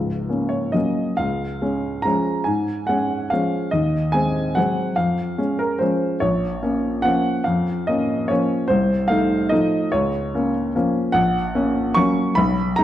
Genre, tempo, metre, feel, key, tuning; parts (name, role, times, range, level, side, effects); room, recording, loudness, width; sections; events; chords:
classical, piano waltz; 145 BPM; 3/4; uneven beats, rubato; Db major; A4 = 441 Hz
warm baby grand piano; solo; 0.0-12.8 s; C#1 to C#6; -18 LUFS; equal
wet recital hall reverb, RT60 1.7 s; dark, warm production; -18 LUFS; side -12 dB against mid
0.0-1.2 A section; 1.2-12.8 B section
0.0 F#; 1.2 Db; 3.7 Ab7/Eb; 5.0 Db/F; 6.2 Bbm; 8.7 F7/C; 9.9 Bbm/Db; 11.2 F#/A#